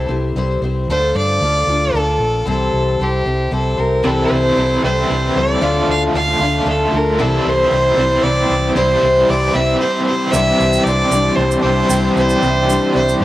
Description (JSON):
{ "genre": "folk rock and heartland rock", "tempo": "114 BPM", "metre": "3/4", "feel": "straight", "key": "unclear", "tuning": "A4 = 436 Hz", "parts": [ { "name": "rich fiddle", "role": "melody", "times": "0.0-13.2 s", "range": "G4 to F5", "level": "-17 LUFS", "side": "right 1 dB", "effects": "cassette tape" }, { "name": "picked twelve-string acoustic guitar", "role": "accompaniment", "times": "0.0-13.2 s", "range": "C3 to C5", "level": "-20 LUFS", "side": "left 4 dB", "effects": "none" }, { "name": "hollow-body short-scale fingered electric bass", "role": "bass", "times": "0.0-13.2 s", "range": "Bb1 to G2", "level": "-20 LUFS", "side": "right 1 dB", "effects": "none" }, { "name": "overdriven electric guitar", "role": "riff", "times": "4.0-13.2 s", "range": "C3 to G4", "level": "-19 LUFS", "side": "right 1 dB", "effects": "tremolo" }, { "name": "rich studio string section", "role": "sustained chords", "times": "10.3-13.2 s", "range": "G3 to E4", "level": "-26 LUFS", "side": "equal", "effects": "none" }, { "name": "tube shaker", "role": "percussion", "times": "10.3-13.2 s", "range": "none", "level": "-28 LUFS", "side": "right 7 dB", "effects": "none" } ], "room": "wet spring reverb, RT60 2.7 s", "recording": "home recording on cassette", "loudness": "-13 LUFS", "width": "side -15 dB against mid", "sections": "0.0-4.0 A section; 4.0-10.3 B section; 10.3-13.2 C section", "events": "break 9.8-10.3", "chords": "0.0 C; 0.9 Dm; 2.5 C; 4.0 C6; 5.6 Dm; 7.2 C; 10.3 Cadd9" }